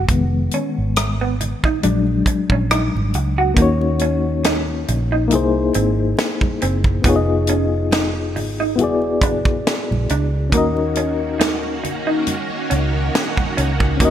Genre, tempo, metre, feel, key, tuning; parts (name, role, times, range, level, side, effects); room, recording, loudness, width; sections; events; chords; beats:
R&B, neo-soul; 69 BPM; 4/4; swing 55% on 16ths; A4 = 441 Hz
electric guitar through a small old amp; second line; 0.0-14.1 s; Bb3 to F#4; -24 LUFS; right 4 dB; wide subtle chorus
mellow reed electric piano; accompaniment; 0.0-14.1 s; Eb3 to Eb5; -21 LUFS; left 5 dB; fast tremolo
vintage muted fingered electric bass; bass; 0.0-14.1 s; E1 to Eb2; -21 LUFS; right 1 dB
tight funk drum kit; drums; 0.1-14.1 s; hi-hat, kick drum, rim click, snare drum; -20 LUFS; equal; gated reverb
congas; percussion; 0.1-13.6 s; -32 LUFS; right 3 dB
string machine, violins; sustained chords; 10.5-14.1 s; Eb3 to Gb4; -24 LUFS; right 1 dB; ensemble chorus
light reverb; bright 1980s-style digital production; -16 LUFS; side -10 dB against mid
0.0-3.6 A section; 3.6-14.1 B section
reed electric piano solo 0.0-3.6
0.1 Fm7b5; 1.8 Bb7alt; 3.6 Ebm7; 5.3 C7alt; 7.0 Fm7b5; 8.8 E9; 10.5 Ebm7
| 0.09 0.96 1.83 2.70 | 3.57 4.44 5.31 6.18 | 7.05 7.92 8.79 9.66 | 10.53 11.39 12.26 13.13 | 14.00